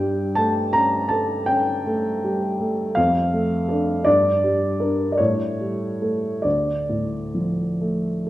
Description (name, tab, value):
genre	classical, romantic nocturne for solo piano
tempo	43-56 BPM (dotted quarters)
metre	9/8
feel	rubato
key	D minor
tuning	A4 = 439 Hz
part	warm upright piano	solo	0.0-8.3 s	D2 to Bb5	-19 LUFS	equal	none
room	wet recital hall reverb, RT60 1.5 s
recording	none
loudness	-19 LUFS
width	side -15 dB against mid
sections	0.0-8.3 A section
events	none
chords	0.0 A7/G; 3.0 Dm/F; 4.1 Gm; 5.2 A7; 6.5 Dm